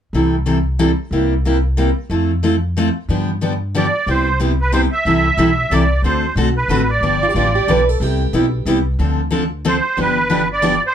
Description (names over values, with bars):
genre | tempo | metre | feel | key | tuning
acoustic string swing (jazz manouche) | 183 BPM | 3/4 | swing 61% on 8ths | C major | A4 = 439 Hz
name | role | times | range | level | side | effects
picked steel-string acoustic guitar | accompaniment | 0.1-10.7 s | C3 to A4 | -18 LUFS | left 1 dB | none
upright bass | bass | 0.1-10.8 s | G1 to G2 | -19 LUFS | equal | none
musette accordion | melody | 3.8-10.9 s | B4 to E5 | -17 LUFS | right 3 dB | slapback echo
picked plugged-in steel-string acoustic guitar | second line | 7.2-8.7 s | F4 to B4 | -20 LUFS | right 4 dB | none
room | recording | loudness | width
light reverb | close, detailed microphones | -14 LUFS | side -9 dB against mid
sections
0.1-4.1 A section; 4.1-10.9 B section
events
none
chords
0.1 C6; 1.1 C7; 2.1 Fmaj7; 3.1 G7; 4.1 Cmaj7; 5.1 Am7; 6.0 D7; 7.0 G7; 8.0 Cmaj7; 9.0 Dm7; 10.0 G7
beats
| 0.13 0.46 0.79 | 1.12 1.45 1.77 | 2.10 2.43 2.76 | 3.09 3.42 3.74 | 4.07 4.40 4.73 | 5.05 5.38 5.71 | 6.04 6.37 6.69 | 7.02 7.35 7.68 | 8.01 8.33 8.66 | 8.99 9.32 9.65 | 9.97 10.30 10.63